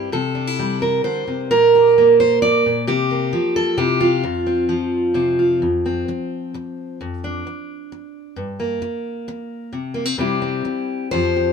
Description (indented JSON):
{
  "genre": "folk, solo fingerstyle acoustic guitar",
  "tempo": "131 BPM",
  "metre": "3/4",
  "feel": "rubato",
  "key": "F major",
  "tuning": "A4 = 440 Hz",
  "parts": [
    { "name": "fingerpicked steel-string acoustic guitar", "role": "solo", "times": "0.0-11.5 s", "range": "F2 to D5", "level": "-17 LUFS", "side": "right 1 dB", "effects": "none" }
  ],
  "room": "light reverb",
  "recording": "minimal, uncompressed stereo recording",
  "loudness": "-16 LUFS",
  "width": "side -6 dB against mid",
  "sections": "0.0-5.6 A section; 5.6-11.1 B section",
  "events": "none",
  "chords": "0.0 C; 1.5 Gm/Bb; 2.9 C7sus4; 3.8 C; 4.2 F5; 7.0 Dm/F; 8.4 Gm; 9.7 Bbsus2/C; 10.2 C"
}